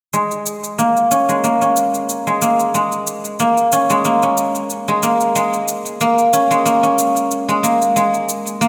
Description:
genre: organic downtempo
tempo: 92 BPM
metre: 4/4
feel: swing 54% on 16ths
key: Bb minor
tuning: A4 = 440 Hz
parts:
  - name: guzheng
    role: arpeggios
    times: 0.1-8.7 s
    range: Ab3 to Db4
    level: -16 LUFS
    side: equal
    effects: low-pass filter, delay
  - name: cabasa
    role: drums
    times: 0.1-8.7 s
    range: none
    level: -27 LUFS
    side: equal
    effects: small room ambience
room: wet lush hall reverb, RT60 2.9 s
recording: bright 1980s-style digital production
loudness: -16 LUFS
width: mono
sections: 0.1-8.7 A section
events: filter sweep on guzheng 0.1-8.7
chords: 0.1 Bbm7

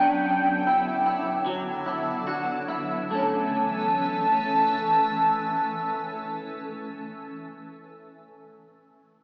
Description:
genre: dream pop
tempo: 70-79 BPM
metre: 4/4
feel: straight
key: A major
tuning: A4 = 438 Hz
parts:
  - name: warm velvety synth lead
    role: melody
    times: 0.0-7.3 s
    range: G5 to A5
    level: -24 LUFS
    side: equal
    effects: chorus, tape echo
  - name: granular cloud pad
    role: sustained chords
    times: 0.0-7.3 s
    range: D3 to A4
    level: -31 LUFS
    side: equal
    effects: built-in reverb, phaser
  - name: electric guitar at the edge of break-up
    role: arpeggios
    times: 0.0-7.5 s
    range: F#3 to A4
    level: -30 LUFS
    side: equal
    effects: analog chorus, tape echo
room: wet recital hall reverb, RT60 1.8 s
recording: small speaker sound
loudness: -22 LUFS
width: side -40 dB against mid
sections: 0.0-3.1 A section; 3.1-6.5 B section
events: slowing down 0.0-3.1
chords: 0.0 Gmaj7; 3.1 A

